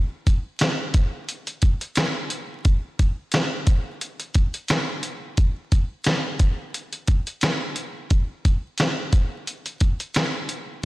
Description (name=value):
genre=hip hop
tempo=88 BPM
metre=4/4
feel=swing 57% on 16ths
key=none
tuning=none
part: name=dusty soul sampler-style drum kit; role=drums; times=0.3-10.7 s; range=hi-hat, kick drum, snare drum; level=-20 LUFS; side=equal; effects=none
room=moderate echo chamber reverb, RT60 1.9 s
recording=blown-out, overdriven recording, vinyl crackle, overdrive, lossy compression artefacts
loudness=-21 LUFS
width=side -19 dB against mid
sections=0.0-10.8 A section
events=none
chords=none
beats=0.61 1.29 1.97 | 2.65 3.33 4.02 4.70 | 5.38 6.06 6.74 7.42 | 8.11 8.79 9.47 10.15